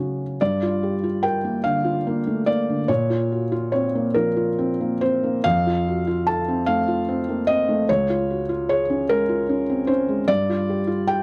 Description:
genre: neoclassical minimalist piano.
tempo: 42-50 BPM (dotted quarters).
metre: 6/8.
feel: rubato.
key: unclear.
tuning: A4 = 438 Hz.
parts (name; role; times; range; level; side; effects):
felt-muted upright piano; solo; 0.0-11.2 s; Db2 to A5; -22 LUFS; equal; none.
room: little or no reverb.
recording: dry, close 1970s-style studio recording.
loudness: -22 LUFS.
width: mono.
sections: 0.4-11.2 A section.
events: none.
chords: 0.4 Gm7; 2.9 Bbmadd9; 5.4 F; 7.9 Db; 10.3 G7(no3).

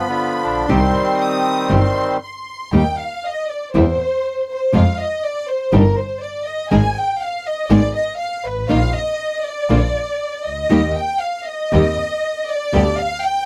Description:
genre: tango.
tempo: 120 BPM.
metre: 4/4.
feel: rubato.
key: Eb major.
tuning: A4 = 440 Hz.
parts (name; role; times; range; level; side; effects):
bandoneon; melody; 0.0-2.2 s; D3 to D4; -20 LUFS; equal; none.
warm studio violin section; second line; 0.0-13.5 s; Bb4 to Eb6; -24 LUFS; equal; none.
clear double bass; bass; 0.4-12.9 s; G1 to F2; -21 LUFS; equal; none.
nylon-string guitar; accompaniment; 0.7-12.8 s; C3 to Ab4; -18 LUFS; equal; none.
dark studio string section; stabs; 0.7-12.9 s; G3 to Ab4; -28 LUFS; equal; none.
room: light reverb.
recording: none.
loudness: -19 LUFS.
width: mono.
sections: 0.0-2.7 A section; 2.7-13.5 B section.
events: violin section solo 2.7-13.5.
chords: 0.0 G7 (rootless); 0.7 Cm; 2.7 Eb; 3.7 C7/E; 4.7 Fm; 5.7 Cmadd9/G; 6.7 Ab; 7.7 Abm; 8.7 Bbsus4; 9.7 Bb; 10.7 Eb; 11.7 Cm/Eb; 12.7 G/D.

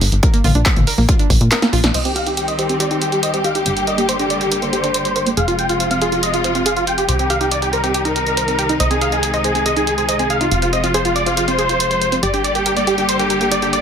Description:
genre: uplifting trance.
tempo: 140 BPM.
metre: 4/4.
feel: straight.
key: C minor.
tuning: A4 = 440 Hz.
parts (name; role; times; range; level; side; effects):
plucky analog bass; bass; 0.0-13.8 s; F1 to Bb2; -23 LUFS; equal; sidechain pumping.
punchy analog drum machine; drums; 0.0-13.8 s; crash cymbal, handclaps, hi-hat, snare drum, toms; -21 LUFS; right 1 dB; sidechain pumping on hats, sidechain pumping on toms, sidechain pumping on cymbals.
analog pluck; arpeggios; 0.2-13.7 s; Bb3 to C5; -24 LUFS; right 2 dB; chorus, sidechain pumping, tape echo.
electronic kick drum; drums; 0.2-1.4 s; none; -15 LUFS; equal; none.
big supersaw lead; melody; 1.9-13.8 s; F4 to G5; -18 LUFS; equal; sidechain pumping, low-pass filter, ping-pong delay.
bright studio string section; sustained chords; 1.9-13.8 s; C3 to G4; -22 LUFS; left 2 dB; sidechain pumping.
room: light reverb.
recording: none.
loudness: -14 LUFS.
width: side -7 dB against mid.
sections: 0.0-1.9 A section; 1.9-13.8 B section.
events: kick drops out 1.5-1.9; drum fill 1.5-1.9; filter sweep on supersaw synth 1.9-13.8.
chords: 0.2 N.C.; 1.9 Cm; 3.7 Gm; 5.4 Fm; 7.1 Cm; 8.8 Ab/C; 10.5 Fm; 12.2 Gm.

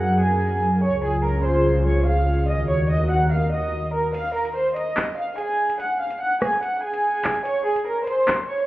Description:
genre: hip hop, drill.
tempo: 145 BPM.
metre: 4/4.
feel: half-time.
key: F phrygian.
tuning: A4 = 440 Hz.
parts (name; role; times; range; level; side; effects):
warm studio violin section; melody; 0.0-8.7 s; Ab4 to Gb6; -22 LUFS; right 1 dB; tape echo.
airy breathy pad; sustained chords; 0.0-4.1 s; Db2 to Bb4; -21 LUFS; equal; chorus.
drill drum kit; drums; 4.1-8.4 s; crash cymbal, handclaps, hi-hat, rim click; -25 LUFS; equal; vintage 12-bit sampler grit.
room: light reverb.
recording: heard muffled through a wall, club reverb, vinyl crackle, EQ.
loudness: -19 LUFS.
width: side -16 dB against mid.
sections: 0.0-4.1 A section; 4.1-8.7 B section.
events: break 4.1-8.7.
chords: 0.0 Gbadd9; 0.8 Db; 2.5 Ebm; 4.1 Fm; 5.8 Gbsus2; 7.5 Db5.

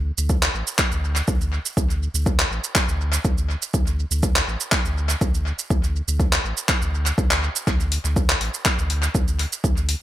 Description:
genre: afro house.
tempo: 122 BPM.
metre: 4/4.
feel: straight.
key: unclear.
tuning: A4 = 440 Hz.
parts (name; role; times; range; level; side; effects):
warm sub bass; bass; 0.0-9.9 s; A1 to D2; -24 LUFS; equal; sidechain pumping.
deep house drum kit; drums; 0.2-10.0 s; handclaps, hi-hat, shaker; -23 LUFS; equal; overdrive, tape echo.
electronic kick drum; drums; 0.3-9.7 s; none; -22 LUFS; equal; overdrive.
room: little or no reverb.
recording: echo-heavy mix.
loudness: -19 LUFS.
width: side -13 dB against mid.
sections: 0.0-10.0 A section.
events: none.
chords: none.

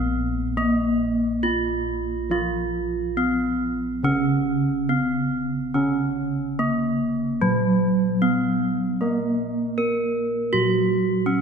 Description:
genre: Javanese gamelan.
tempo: 70-84 BPM.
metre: 4/4.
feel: straight.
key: Bb pelog.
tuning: A4 = 442 Hz.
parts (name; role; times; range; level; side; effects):
gamelan-type bronze metallophone; melody; 0.0-11.4 s; Gb3 to Bb4; -22 LUFS; right 2 dB; none.
gamelan-type bronze metallophone; accompaniment; 0.0-11.4 s; Db3 to Bb3; -27 LUFS; equal; none.
gamelan-type bossed gongs; bass; 0.0-11.4 s; Bb1 to Bb4; -29 LUFS; left 2 dB; none.
room: wet concert hall reverb, RT60 2.2 s.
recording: recorded in a church or concert hall, nothing above 11.0 kHz.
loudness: -20 LUFS.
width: side -6 dB against mid.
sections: 0.0-11.4 A section.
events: none.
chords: none.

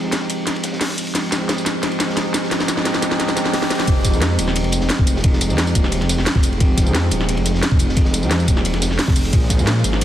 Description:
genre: liquid drum and bass.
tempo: 176 BPM.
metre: 4/4.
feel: straight.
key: F minor.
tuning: A4 = 436 Hz.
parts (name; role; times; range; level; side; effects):
bell-like tine electric piano; accompaniment; 0.0-10.0 s; F3 to Bb4; -22 LUFS; equal; tape echo.
crunchy breakbeat drum kit; drums; 0.1-10.0 s; hi-hat, ride cymbal, snare drum; -28 LUFS; equal; high-pass filter on cymbals, high-pass filter on hats, high-pass filter on snare, high-pass filter on room.
drum and bass drum kit; drums; 0.1-10.0 s; hi-hat, snare drum, tambourine; -22 LUFS; equal; none.
swelling detuned saw bass; bass; 3.9-10.0 s; Eb1 to Bb2; -20 LUFS; equal; none.
electronic kick drum; drums; 3.9-9.6 s; none; -16 LUFS; equal; none.
room: moderate concert hall reverb, RT60 2.4 s.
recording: dense, heavily limited modern master.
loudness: -16 LUFS.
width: side -12 dB against mid.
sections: 0.0-3.9 A section; 3.9-10.0 B section.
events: build-up 0.0-3.9; drum fill 0.0-3.9; drop 3.9-10.0.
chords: 0.0 Fm9; 9.3 Bbm7.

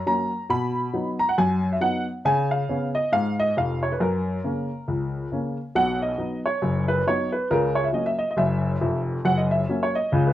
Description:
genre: jazz, stride piano.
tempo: 137 BPM.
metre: 4/4.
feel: swing 59% on 8ths.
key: B major.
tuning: A4 = 440 Hz.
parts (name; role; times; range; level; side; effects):
warm upright piano; solo; 0.1-10.3 s; E#1 to B5; -21 LUFS; equal; none.
room: moderate club reverb, RT60 0.7 s.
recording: worn, warbling old tape, cassette tape, warbly pitch drift.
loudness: -21 LUFS.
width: side -13 dB against mid.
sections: 0.0-5.7 A section; 5.7-10.3 A section.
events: none.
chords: 0.5 B; 2.2 C#7; 4.0 F#; 5.7 B; 7.5 F#7/C#; 9.2 F#.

